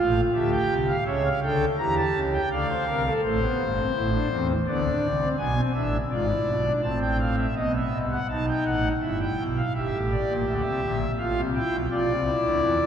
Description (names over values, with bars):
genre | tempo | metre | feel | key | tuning
classical, baroque-style 3-part fugue for pipe organ | 83 BPM | 3/4 | straight | unclear | A4 = 442 Hz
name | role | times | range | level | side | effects
pipe organ, foundations | solo | 0.0-12.9 s | G1 to A#5 | -22 LUFS | equal | none
room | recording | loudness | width
wet church reverb, RT60 3.7 s | heard from further back in the room | -22 LUFS | side -8 dB against mid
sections
0.0-7.6 A section; 7.6-12.9 B section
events
none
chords
0.3 Cadd9; 1.1 C#dim7; 2.5 Dm; 3.2 Am; 4.7 Csus2; 5.4 G#dim7; 6.8 Am; 7.6 B7; 9.0 Em/G; 9.8 C7/G; 11.2 F/A; 11.9 Bb